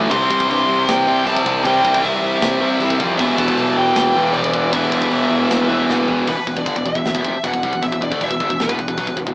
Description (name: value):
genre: heavy metal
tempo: 156 BPM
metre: 4/4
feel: straight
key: E minor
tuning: A4 = 440 Hz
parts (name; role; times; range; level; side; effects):
- sludgy distorted guitar; riff; 0.0-6.3 s; E2 to C4; -19 LUFS; right 1 dB; overdrive
- thick fuzz guitar; riff; 0.0-6.3 s; C3 to E4; -24 LUFS; equal; distortion
- tight distorted guitar; riff; 0.0-9.3 s; E2 to C4; -21 LUFS; left 1 dB; distortion
- fuzz picked electric bass; bass; 0.0-9.3 s; E1 to C3; -26 LUFS; equal; overdrive
- high-gain lead guitar; melody; 0.1-9.1 s; B4 to C6; -20 LUFS; equal; distortion
- tight metal drum kit; drums; 0.1-9.3 s; crash cymbal, hi-hat, kick drum, snare drum, toms; -25 LUFS; equal; none
room: light reverb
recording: rough rehearsal-room recording, small speaker sound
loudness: -15 LUFS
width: side -23 dB against mid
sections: 0.0-6.3 A section; 6.3-9.3 B section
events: drum fill 5.9-6.3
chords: 0.1 C; 3.2 Em